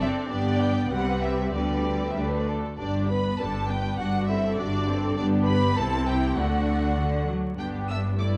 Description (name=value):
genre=quick classical-period movement for string orchestra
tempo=99 BPM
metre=2/4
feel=rubato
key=G major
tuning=A4 = 440 Hz
part: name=rich studio violin section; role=melody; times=0.0-8.3 s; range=C5 to E6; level=-35 LUFS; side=equal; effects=none
part: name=rich studio violin section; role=second line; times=0.0-8.4 s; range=D4 to E5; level=-34 LUFS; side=equal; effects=none
part: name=bright studio viola section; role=accompaniment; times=0.0-8.4 s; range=G3 to B4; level=-32 LUFS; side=equal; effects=none
part: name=rich studio cello section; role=bass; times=0.0-8.4 s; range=F#2 to F#3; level=-32 LUFS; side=equal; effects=none
part: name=rich studio double bass section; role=bass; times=0.0-8.4 s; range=F#1 to D2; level=-31 LUFS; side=equal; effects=none
room=moderate scoring stage reverb, RT60 1.7 s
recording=dark, warm production, vinyl crackle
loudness=-26 LUFS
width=mono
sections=0.0-2.8 A section; 2.8-8.4 B section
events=none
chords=0.3 G; 0.9 Cmaj7; 1.5 G/D; 2.2 D5; 2.8 G; 4.0 D7/G; 5.2 G; 5.8 C; 6.4 D; 7.6 G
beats=| 0.31 0.91 | 1.54 2.17 | 2.79 3.40 | 4.00 4.59 | 5.19 5.79 | 6.38 6.99 | 7.60 8.20